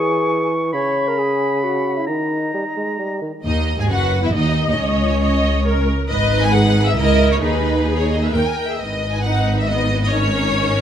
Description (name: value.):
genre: classical, dramatic, fast romantic movement for symphony orchestra.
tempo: 135 BPM.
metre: 3/4.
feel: straight.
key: G# minor.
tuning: A4 = 440 Hz.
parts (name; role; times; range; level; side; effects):
mellow clarinet; second line; 0.0-3.2 s; D#4 to C#5; -24 LUFS; left 2 dB; none.
small flute group; second line; 0.0-3.2 s; D#5 to C#6; -30 LUFS; left 4 dB; none.
warm oboe; second line; 0.0-3.2 s; A#5 to C#6; -23 LUFS; right 2 dB; none.
dark bassoon; accompaniment; 0.0-3.3 s; C#3 to G#3; -22 LUFS; right 1 dB; none.
clear symphonic violin section; melody; 3.4-10.8 s; B4 to G#5; -22 LUFS; left 2 dB; none.
rich symphonic cello section; bass; 3.4-10.8 s; C#2 to G#2; -21 LUFS; right 1 dB; none.
rich symphonic double bass section; bass; 3.4-10.8 s; F#1 to D#2; -21 LUFS; right 1 dB; none.
warm symphonic violin section; second line; 3.5-10.8 s; C#4 to B4; -24 LUFS; left 2 dB; none.
rich symphonic viola section; accompaniment; 3.9-10.8 s; B3 to D#5; -23 LUFS; right 1 dB; none.
room: moderate scoring stage reverb, RT60 1.8 s.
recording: none.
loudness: -16 LUFS.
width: side -9 dB against mid.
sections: 0.0-3.4 A section; 3.4-10.8 B section.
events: none.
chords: 0.0 C#m/E; 0.7 C#5; 2.1 D#; 3.4 G#m (rootless); 4.8 D#5/C#; 6.1 G#m; 7.0 A#dim/C#; 7.4 G#m/D#; 8.3 D#5; 8.8 G#m; 10.1 D#5/G#.